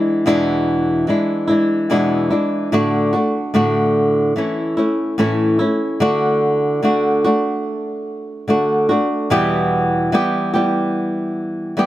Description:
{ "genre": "pop", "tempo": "73 BPM", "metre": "4/4", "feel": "straight", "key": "D major", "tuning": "A4 = 438 Hz", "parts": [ { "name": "flamenco guitar", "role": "solo", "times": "0.0-11.9 s", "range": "E2 to G4", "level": "-15 LUFS", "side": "equal", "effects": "none" } ], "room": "light reverb", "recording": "none", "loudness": "-15 LUFS", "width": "side -14 dB against mid", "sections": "0.0-6.0 A section; 6.0-11.9 B section", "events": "none", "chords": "0.0 E7; 2.7 D/A; 4.4 A; 6.0 D; 9.3 Em", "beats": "0.26 1.08 1.91 | 2.73 3.55 4.37 5.19 | 6.01 6.84 7.66 8.48 | 9.30 10.12 10.95 11.77" }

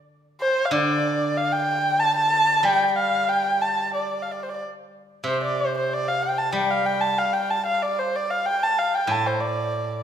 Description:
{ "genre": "chinese traditional, Chinese chamber ensemble", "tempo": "94 BPM", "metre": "4/4", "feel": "rubato", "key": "D yu mode", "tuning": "A4 = 442 Hz", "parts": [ { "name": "dark erhu", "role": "melody", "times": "0.4-10.0 s", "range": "C5 to A5", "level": "-21 LUFS", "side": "equal", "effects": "none" }, { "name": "steel-string zither", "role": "accompaniment", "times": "0.7-10.0 s", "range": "A2 to G3", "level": "-27 LUFS", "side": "equal", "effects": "none" } ], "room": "wet recital hall reverb, RT60 1.6 s", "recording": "minimal, uncompressed stereo recording", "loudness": "-20 LUFS", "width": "side -9 dB against mid", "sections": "0.0-5.3 A section; 5.3-10.0 B section", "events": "none", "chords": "none", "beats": "| 0.10 0.74 1.37 2.01 | 2.65 3.29 3.94 4.60 | 5.26 5.91 6.55 7.18 | 7.82 8.46 9.09 9.71" }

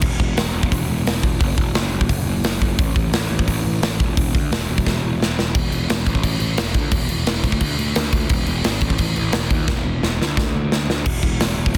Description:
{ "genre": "punk rock", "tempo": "174 BPM", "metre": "4/4", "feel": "straight", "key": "unclear", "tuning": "A4 = 439 Hz", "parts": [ { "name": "fuzz picked electric bass", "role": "bass", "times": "0.0-11.8 s", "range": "E1 to D#2", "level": "-24 LUFS", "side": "equal", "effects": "overdrive" }, { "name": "big rock drum kit", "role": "drums", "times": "0.0-11.8 s", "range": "crash cymbal, hi-hat, kick drum, snare drum", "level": "-22 LUFS", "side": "equal", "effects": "none" } ], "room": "little or no reverb", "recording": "dense, heavily limited modern master", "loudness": "-20 LUFS", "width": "mono", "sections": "0.0-5.5 A section; 5.5-11.1 B section", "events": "drum fill 4.9-5.5, 9.7-11.1", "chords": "none", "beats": "| 0.04 0.38 0.72 1.07 | 1.41 1.75 2.10 2.44 | 2.79 3.13 3.48 3.82 | 4.16 4.51 4.85 5.20 | 5.54 5.89 6.23 6.58 | 6.92 7.27 7.61 7.96 | 8.30 8.65 8.99 9.34 | 9.69 10.03 10.38 10.72 | 11.07 11.41 11.76" }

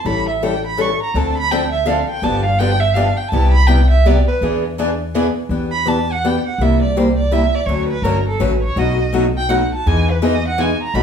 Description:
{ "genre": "acoustic string swing (jazz manouche)", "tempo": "165 BPM", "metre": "3/4", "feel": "swing 63% on 8ths", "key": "E minor from 5.5 s", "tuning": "A4 = 440 Hz", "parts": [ { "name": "warm violin", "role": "melody", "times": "0.0-11.0 s", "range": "A4 to C#6", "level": "-20 LUFS", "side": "right 3 dB", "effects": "none" }, { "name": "upright bass", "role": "bass", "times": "0.0-11.0 s", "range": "G1 to E2", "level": "-18 LUFS", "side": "equal", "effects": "none" }, { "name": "picked steel-string acoustic guitar", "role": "accompaniment", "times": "0.1-11.0 s", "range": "B2 to A4", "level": "-19 LUFS", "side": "left 2 dB", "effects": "none" }, { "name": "picked steel-string acoustic guitar", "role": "accompaniment", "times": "1.1-5.3, 9.9-11.0 s", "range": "B2 to B4", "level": "-25 LUFS", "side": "right 5 dB", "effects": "none" } ], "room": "wet large studio reverb, RT60 0.8 s", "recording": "band playing live in one room", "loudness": "-14 LUFS", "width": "side -7 dB against mid", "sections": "0.0-5.5 A section; 5.5-11.0 A section", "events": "violin solo 0.0-5.5, 5.5-11.0", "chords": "0.0 A7; 1.1 Dm7; 2.2 G7; 3.3 Cmaj7; 4.4 E7; 5.5 Em7; 6.6 C7; 7.7 Dmaj7; 8.8 B7; 9.9 Emaj7", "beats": "| 0.04 0.41 0.77 | 1.14 1.50 1.86 | 2.23 2.59 2.96 | 3.32 3.68 4.05 | 4.41 4.77 5.14 | 5.50 5.86 6.23 | 6.59 6.96 7.32 | 7.68 8.04 8.41 | 8.77 9.13 9.50 | 9.86 10.22 10.58 | 10.95" }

